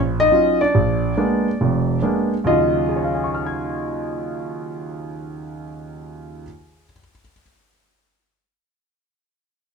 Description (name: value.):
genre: solo jazz.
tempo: 139 BPM.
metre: 4/4.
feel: swing 67% on 8ths.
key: Eb minor.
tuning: A4 = 436 Hz.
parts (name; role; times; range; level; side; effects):
warm concert grand piano; solo; 0.0-7.4 s; F1 to Ab6; -19 LUFS; equal; none.
room: light reverb.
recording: minimal, uncompressed stereo recording.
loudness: -17 LUFS.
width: side -5 dB against mid.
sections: 0.0-2.5 A section; 2.5-5.9 B section.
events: none.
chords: 0.0 Ebm9; 0.7 Bb7b9; 2.5 Ebm9.